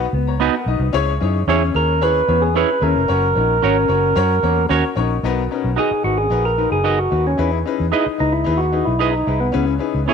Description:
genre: soul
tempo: 112 BPM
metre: 4/4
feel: straight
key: B major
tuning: A4 = 440 Hz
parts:
  - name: bright upright piano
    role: accompaniment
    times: 0.0-10.1 s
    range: B2 to A#5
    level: -24 LUFS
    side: left 10 dB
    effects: none
  - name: vintage muted fingered electric bass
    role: bass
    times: 0.0-10.1 s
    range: E#1 to F#2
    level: -20 LUFS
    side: equal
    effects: none
  - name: mellow electric guitar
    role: riff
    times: 0.1-10.1 s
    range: A#3 to F#4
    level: -26 LUFS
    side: left 13 dB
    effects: none
  - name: semi-hollow electric guitar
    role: stabs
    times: 0.4-10.1 s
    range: B3 to D#5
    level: -22 LUFS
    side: right 12 dB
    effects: none
  - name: vibraphone with soft mallets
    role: second line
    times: 1.7-4.7 s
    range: G#4 to B4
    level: -28 LUFS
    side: right 13 dB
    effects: none
  - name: percussive tonewheel organ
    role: melody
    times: 1.8-10.1 s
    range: B3 to B4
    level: -19 LUFS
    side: right 2 dB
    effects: overdrive, stopped rotary speaker
room: moderate echo chamber reverb, RT60 2.0 s, small room ambience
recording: 1960s-style stereo with parts hard left and right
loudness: -15 LUFS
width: side -6 dB against mid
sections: 0.0-5.2 A section; 5.2-10.1 B section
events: tonewheel organ solo 5.2-10.1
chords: 0.0 B; 0.9 C#m; 3.1 F#; 5.2 Bmaj7; 7.4 Emaj7; 9.5 C#m7

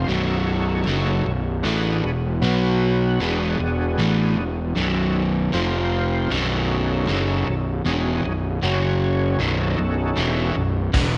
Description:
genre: blues rock power trio and southern rock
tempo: 77 BPM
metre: 4/4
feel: straight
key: B mixolydian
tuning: A4 = 440 Hz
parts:
  - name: overdriven tonewheel organ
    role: sustained chords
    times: 0.0-11.2 s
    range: F3 to C#5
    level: -30 LUFS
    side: equal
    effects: slow rotary speaker, chorus vibrato
  - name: crunchy overdriven guitar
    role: riff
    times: 0.0-11.2 s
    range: B1 to B3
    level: -25 LUFS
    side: equal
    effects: none
  - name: fuzz fingered electric bass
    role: bass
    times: 0.0-11.2 s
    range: B0 to B1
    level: -26 LUFS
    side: equal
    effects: overdrive
  - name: vintage drum kit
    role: drums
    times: 10.9-11.1 s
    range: hi-hat, kick drum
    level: -23 LUFS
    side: equal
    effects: none
room: light reverb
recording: nothing above 10.8 kHz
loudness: -22 LUFS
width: mono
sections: 0.0-11.2 A section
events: none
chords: 0.1 B7; 1.6 E7; 2.4 B5; 3.2 E7; 4.8 B7; 5.5 F5; 6.3 B7; 8.6 F#5; 9.4 B7

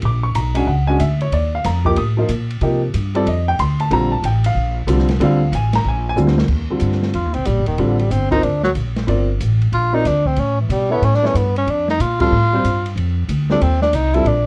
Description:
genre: jazz, small-group swing and bop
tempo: 186 BPM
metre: 4/4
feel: swing 64% on 8ths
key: Bb major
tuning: A4 = 440 Hz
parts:
  - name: upright bass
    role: bass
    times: 0.0-14.5 s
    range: Eb1 to C3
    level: -20 LUFS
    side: equal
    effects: none
  - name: open jazz drum kit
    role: drums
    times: 0.0-14.4 s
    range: crash cymbal, hi-hat, kick drum, ride cymbal, snare drum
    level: -30 LUFS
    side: equal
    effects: none
  - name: warm upright piano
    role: accompaniment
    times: 0.1-14.3 s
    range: D3 to Eb6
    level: -22 LUFS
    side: equal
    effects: none
  - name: breathy tenor saxophone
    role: melody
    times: 7.1-14.5 s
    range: D3 to F4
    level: -21 LUFS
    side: equal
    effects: none
room: light reverb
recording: worn, warbling old tape, cassette tape, warbly pitch drift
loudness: -17 LUFS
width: mono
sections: 0.0-6.5 A section; 6.5-14.5 B section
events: drum fill 6.2-6.5; band accent 12.2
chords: 0.0 Bb7alt; 1.3 Ebsus2; 2.6 Cm7; 3.3 Dmadd11; 3.9 Bbmaj9; 5.8 Bb69; 6.5 Eb69; 7.8 Gm11; 8.4 Bb; 9.1 Gm9; 10.4 A7; 11.7 F13

